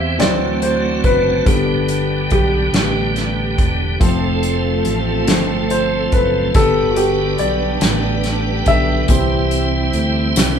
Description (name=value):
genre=slow gospel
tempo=47 BPM (dotted quarters)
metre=6/8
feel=straight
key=unclear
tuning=A4 = 440 Hz
part: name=warm concert grand piano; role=accompaniment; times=0.0-10.6 s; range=D3 to F5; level=-18 LUFS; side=left 2 dB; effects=none
part: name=tonewheel organ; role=sustained chords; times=0.0-10.6 s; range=D3 to C5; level=-22 LUFS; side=right 3 dB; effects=slow rotary speaker, chorus vibrato
part: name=warm studio string section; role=sustained chords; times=0.0-10.6 s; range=E3 to A4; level=-25 LUFS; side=right 2 dB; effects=none
part: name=fingered electric bass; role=bass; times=0.0-10.6 s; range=E1 to E2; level=-21 LUFS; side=equal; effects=none
part: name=natural country drum kit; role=drums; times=0.2-10.6 s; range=hi-hat, kick drum, snare drum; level=-18 LUFS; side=equal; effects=none
part: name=tambourine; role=percussion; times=9.1-10.6 s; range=none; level=-26 LUFS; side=left 5 dB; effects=none
room=moderate large studio reverb, RT60 1.1 s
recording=band playing live in one room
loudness=-14 LUFS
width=side -7 dB against mid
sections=0.0-10.6 A section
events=grand piano solo 0.0-10.6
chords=0.2 D7; 1.5 G; 4.0 F; 6.6 G; 9.1 C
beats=0.20 | 1.47 2.74 | 4.01 5.28 | 6.55 7.82 | 9.09 10.36